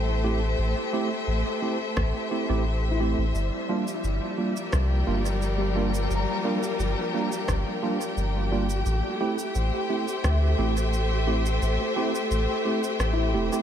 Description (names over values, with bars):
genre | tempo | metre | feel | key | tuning
ambient dub | 87 BPM | 4/4 | straight | unclear | A4 = 437 Hz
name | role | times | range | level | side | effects
clear studio string section | sustained chords | 0.0-13.6 s | F3 to G5 | -29 LUFS | left 1 dB | none
felt-muted upright piano | arpeggios | 0.0-13.6 s | G3 to Bb5 | -36 LUFS | left 4 dB | tape echo
soft dub sub bass | bass | 0.0-13.5 s | E1 to D2 | -25 LUFS | equal | none
tine electric piano | stabs | 0.2-13.6 s | G3 to G4 | -30 LUFS | right 3 dB | analog chorus, dub echo
electronic kick drum | drums | 2.0-10.4 s | none | -31 LUFS | equal | overdrive
electronic rim click and cabasa | drums | 2.0-13.6 s | none | -37 LUFS | right 1 dB | overdrive, dub echo
room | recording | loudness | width
moderate plate reverb, RT60 2.4 s | dreamy mix soaked in reverb | -23 LUFS | side -9 dB against mid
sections
0.0-13.6 A section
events
kick drops out 13.0-13.6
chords
0.0 Am7; 3.3 Gm7; 8.9 Am7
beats
| 0.59 1.28 1.97 2.66 | 3.35 4.04 4.72 5.41 | 6.10 6.79 7.48 8.17 | 8.86 9.55 10.24 10.93 | 11.62 12.31 13.00